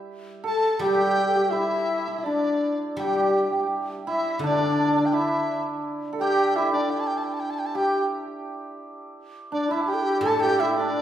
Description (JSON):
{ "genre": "chinese traditional, Chinese chamber ensemble", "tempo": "84 BPM", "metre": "2/4", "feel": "rubato", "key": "unclear", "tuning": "A4 = 440 Hz", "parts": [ { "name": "hammered dulcimer", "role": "second line", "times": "0.0-11.0 s", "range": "G3 to A4", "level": "-26 LUFS", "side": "right 3 dB", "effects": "none" }, { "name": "guzheng", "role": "accompaniment", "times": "0.0-6.5, 10.2-11.0 s", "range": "A2 to G3", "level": "-31 LUFS", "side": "left 1 dB", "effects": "none" }, { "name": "mellow large dizi", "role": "melody", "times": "0.5-11.0 s", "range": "D5 to A5", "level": "-27 LUFS", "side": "equal", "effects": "none" }, { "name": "bright xiao", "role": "second line", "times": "0.5-11.0 s", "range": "D4 to A4", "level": "-26 LUFS", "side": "left 3 dB", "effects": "none" } ], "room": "wet recital hall reverb, RT60 1.8 s", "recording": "heard from further back in the room", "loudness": "-21 LUFS", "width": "side -11 dB against mid", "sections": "0.0-8.8 A section; 8.8-11.0 B section", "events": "none", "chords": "none" }